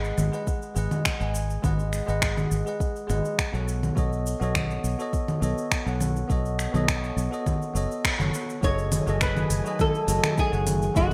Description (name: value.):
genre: sunset chillout.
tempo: 103 BPM.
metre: 4/4.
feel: straight.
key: F# dorian.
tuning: A4 = 439 Hz.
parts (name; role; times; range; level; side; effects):
bell-like tine electric piano; accompaniment; 0.0-11.1 s; F#3 to G#5; -33 LUFS; equal; delay.
fingered electric bass; bass; 0.0-11.1 s; F#1 to B1; -30 LUFS; equal; none.
smooth R&B drum kit; drums; 0.0-11.1 s; congas, finger snaps, hi-hat, shaker; -30 LUFS; equal; gated reverb.
electronic kick drum; drums; 0.5-11.1 s; none; -30 LUFS; equal; none.
flamenco guitar; melody; 8.6-11.1 s; F#4 to C#5; -29 LUFS; equal; analog chorus, delay.
soft string machine; sustained chords; 8.6-11.1 s; D#3 to G#5; -39 LUFS; equal; ensemble chorus.
room: moderate plate reverb, RT60 1.8 s.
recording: bright 1980s-style digital production.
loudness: -26 LUFS.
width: mono.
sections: 0.0-8.6 A section; 8.6-11.1 B section.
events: band accent 8.0.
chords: 0.0 G#m7; 3.7 B9; 8.6 F#m69.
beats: 0.47 1.06 | 1.64 2.22 2.80 3.39 | 3.97 4.55 5.13 5.72 | 6.30 6.88 7.46 8.05 | 8.63 9.21 9.79 10.38 | 10.96.